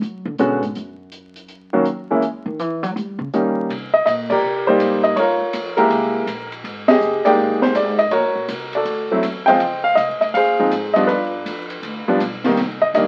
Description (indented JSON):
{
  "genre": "jazz piano trio",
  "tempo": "162 BPM",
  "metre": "4/4",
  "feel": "swing 65% on 8ths",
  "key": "C minor from 3.7 s",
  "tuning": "A4 = 441 Hz",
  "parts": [
    { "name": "upright bass", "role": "bass", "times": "0.0-13.1 s", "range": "Eb1 to G3", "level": "-33 LUFS", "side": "equal", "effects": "none" },
    { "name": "open jazz drum kit", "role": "drums", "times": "0.0-13.1 s", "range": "crash cymbal, hi-hat, kick drum, ride cymbal, snare drum", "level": "-30 LUFS", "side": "equal", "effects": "none" },
    { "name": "clear baby grand piano", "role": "melody", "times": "0.4-13.1 s", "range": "D3 to G5", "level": "-19 LUFS", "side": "equal", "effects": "none" }
  ],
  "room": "light reverb",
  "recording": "very old 78 rpm record, vinyl crackle",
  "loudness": "-19 LUFS",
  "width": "mono",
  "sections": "0.0-3.7 A section; 3.7-13.1 B section",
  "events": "upright bass solo 0.0-3.7; band accent 4.2, 6.8",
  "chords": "0.0 G#m7b5; 0.7 N.C.; 2.2 D#m; 3.0 D#7; 3.7 Cm9; 5.2 Gm7b5; 5.9 C7b13; 6.6 Abmaj7sus2; 8.1 Ebm7; 8.9 D9; 9.6 Dbmaj9; 11.1 G7; 12.6 Cm9",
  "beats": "0.01 0.38 | 0.75 1.12 1.48 1.85 | 2.22 2.59 2.95 3.32 | 3.69 4.06 4.43 4.79 | 5.16 5.53 5.90 6.27 | 6.64 7.01 7.38 7.75 | 8.12 8.49 8.86 9.23 | 9.60 9.97 10.35 10.72 | 11.09 11.46 11.83 12.20 | 12.57 12.94"
}